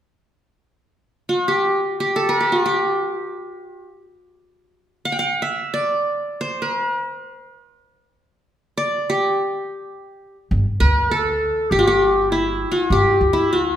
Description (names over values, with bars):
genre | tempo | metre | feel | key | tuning
arabic | free time | none | none | G maqam rast | A4 = 440 Hz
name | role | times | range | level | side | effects
qanun | melody | 1.3-13.8 s | E4 to G5 | -19 LUFS | equal | none
upright bass | bass | 10.5-13.8 s | G1 to D2 | -21 LUFS | equal | none
warm clarinet | second line | 10.8-13.8 s | E4 to B4-48c | -21 LUFS | left 2 dB | none
room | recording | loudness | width
wet recital hall reverb, RT60 1.3 s | recorded in a church or concert hall | -17 LUFS | side -10 dB against mid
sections
0.9-10.5 A section; 10.5-13.8 B section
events
none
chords
none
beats
free time